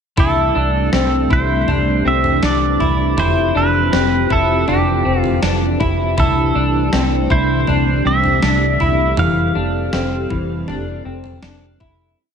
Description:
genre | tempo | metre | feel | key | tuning
dream pop | 80 BPM | 4/4 | straight | F major | A4 = 439 Hz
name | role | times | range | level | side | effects
pedal steel guitar | melody | 0.2-11.8 s | G4 to F5 | -20 LUFS | right 4 dB | tape echo
string machine, cellos | sustained chords | 0.2-12.1 s | C3 to A4 | -21 LUFS | right 1 dB | ensemble chorus
clean electric guitar | arpeggios | 0.2-12.2 s | E3 to E4 | -20 LUFS | left 4 dB | analog chorus, tape echo
vintage muted fingered electric bass | bass | 0.2-12.1 s | F1 to C2 | -20 LUFS | equal | none
gated 80s digital drum machine | drums | 0.2-12.0 s | kick drum, snare drum, toms | -21 LUFS | right 1 dB | gated reverb, gated reverb snare
room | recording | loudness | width
light reverb | none | -14 LUFS | side -7 dB against mid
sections
0.2-12.2 verse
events
fade-out 9.2-12.2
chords
0.2 C6; 3.2 Fmaj9; 6.2 C6; 9.2 Fmaj9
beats
| 0.18 0.93 1.68 2.43 | 3.18 3.93 4.68 5.43 | 6.18 6.93 7.68 8.43 | 9.18 9.93 10.68 11.43

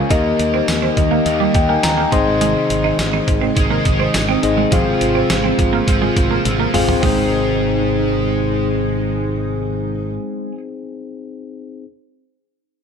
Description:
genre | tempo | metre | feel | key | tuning
1980s-style pop | 104 BPM | 4/4 | straight | Ab major | A4 = 439 Hz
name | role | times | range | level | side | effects
cranked stack guitar | accompaniment | 0.0-10.6 s | Eb3 to Ab4 | -24 LUFS | equal | overdrive, analog chorus
mellow tine electric piano | accompaniment | 0.0-11.9 s | Bb3 to C6 | -19 LUFS | left 4 dB | none
ensemble organ-string | sustained chords | 0.0-10.1 s | C3 to G4 | -23 LUFS | right 2 dB | ensemble chorus
twelve-string electric guitar | riff | 0.0-7.2 s | F3 to Eb4 | -23 LUFS | right 11 dB | analog chorus, digital delay
fretless electric bass | bass | 0.0-10.2 s | Ab1 to Eb2 | -23 LUFS | right 1 dB | none
trip hop sampler-style drum kit | drums | 0.1-7.2 s | hi-hat, kick drum, snare drum, tambourine, toms | -19 LUFS | right 1 dB | gated reverb
room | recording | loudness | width
light reverb | none | -14 LUFS | side -6 dB against mid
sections
0.0-7.0 A section; 7.0-9.3 B section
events
tine electric piano fill 0.7-2.4; drum fill 6.5-7.0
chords
0.1 Eb; 2.1 Ab; 4.7 Fm/Ab; 7.0 Ab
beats
| 0.11 0.68 1.26 1.84 | 2.41 2.99 3.57 4.14 | 4.72 5.30 5.88 6.45 | 7.03 7.61 8.18 8.76

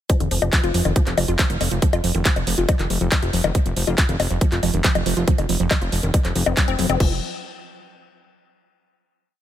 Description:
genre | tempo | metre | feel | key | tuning
psychedelic trance | 139 BPM | 4/4 | straight | unclear | A4 = 439 Hz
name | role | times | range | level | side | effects
woody wave-folded pluck | riff | 0.1-7.2 s | Eb3 to F4 | -25 LUFS | moving between left 8 dB and right 8 dB | chorus, auto-pan, sidechain pumping, dub echo
drum and bass drum kit | drums | 0.1-7.1 s | bongos, crash cymbal, handclaps, hi-hat | -24 LUFS | left 2 dB | overdrive
electronic kick drum | drums | 0.1-7.1 s | none | -18 LUFS | equal | none
fat analog bass | bass | 0.2-7.2 s | F1 | -22 LUFS | equal | none
room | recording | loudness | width
digital ambience | none | -17 LUFS | side -11 dB against mid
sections
0.1-7.0 drop; 7.0-8.7 final chord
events
drop 0.1-7.0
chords
0.1 F5; 7.0 N.C.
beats
| 0.10 0.53 0.96 1.39 | 1.82 2.25 2.69 3.12 | 3.55 3.98 4.41 4.84 | 5.28 5.71 6.14 6.57 | 7.00

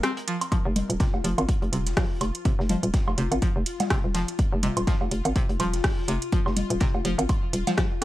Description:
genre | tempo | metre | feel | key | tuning
minimal techno | 124 BPM | 4/4 | swing 57% on 16ths | F minor | A4 = 441 Hz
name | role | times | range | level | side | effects
string-like resonator pluck | riff | 0.0-7.8 s | C3 to C4 | -31 LUFS | equal | chorus, sidechain pumping, tape echo
crunchy breakbeat drum kit | drums | 0.0-7.9 s | hi-hat, snare drum | -41 LUFS | equal | high-pass filter on hats, studio reverb, high-pass filter on snare, high-pass filter on room
house drum kit | drums | 0.0-8.0 s | hi-hat, rim click | -29 LUFS | right 1 dB | studio reverb
pulsing gated texture | texture | 0.0-8.0 s | F4 to Bb4 | -36 LUFS | left 6 dB | chorus, built-in reverb, sidechain pumping
woodblock and congas | percussion | 0.4-7.8 s | none | -30 LUFS | right 1 dB | studio reverb, tape echo
electronic kick drum | drums | 0.5-7.9 s | none | -24 LUFS | equal | studio reverb
hollow knocking FM bass | bass | 0.7-8.0 s | Eb1 to Ab1 | -26 LUFS | equal | sidechain pumping
room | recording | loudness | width
little or no reverb | dry, gritty hardware recording | -22 LUFS | side -15 dB against mid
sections
0.0-8.0 A section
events
break 0.0-0.5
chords
none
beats
0.03 | 0.52 1.00 1.49 1.97 | 2.45 2.94 3.42 3.90 | 4.39 4.87 5.36 5.84 | 6.33 6.81 7.29 7.78

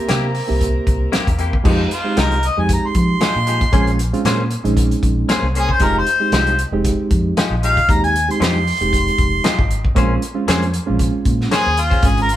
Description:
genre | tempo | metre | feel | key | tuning
straight-eighth soul blues | 116 BPM | 4/4 | swing 55% on 16ths | F minor | A4 = 440 Hz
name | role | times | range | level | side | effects
barky reed electric piano | accompaniment | 0.0-12.3 s | Ab3 to G4 | -22 LUFS | right 3 dB | overdrive, fast tremolo
warm horn section | sustained chords | 0.0-1.6 s | Bb4 to Bb5 | -27 LUFS | right 1 dB | none
direct-recorded clean electric guitar | stabs | 0.1-12.1 s | C3 to C5 | -24 LUFS | left 4 dB | spring reverb
vintage muted fingered electric bass | bass | 0.1-12.4 s | F1 to F3 | -20 LUFS | equal | none
warm soul drum kit | drums | 0.1-12.4 s | crash cymbal, hi-hat, kick drum, snare drum | -19 LUFS | equal | none
warm harmonica | melody | 1.9-12.4 s | F4 to C6 | -18 LUFS | equal | overdrive
room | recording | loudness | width
moderate small room reverb, RT60 0.5 s | band playing live in one room | -14 LUFS | side -12 dB against mid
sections
0.0-1.6 A section; 1.6-12.4 B section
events
harmonica solo 1.6-12.4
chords
0.0 C7; 1.6 Fm9; 3.7 Bbm9; 5.8 Fm9; 10.0 Bbm9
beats
0.09 0.61 1.13 | 1.65 2.17 2.69 3.21 | 3.73 4.25 4.77 5.29 | 5.81 6.33 6.85 7.37 | 7.88 8.40 8.92 9.44 | 9.96 10.48 11.00 11.52 | 12.04

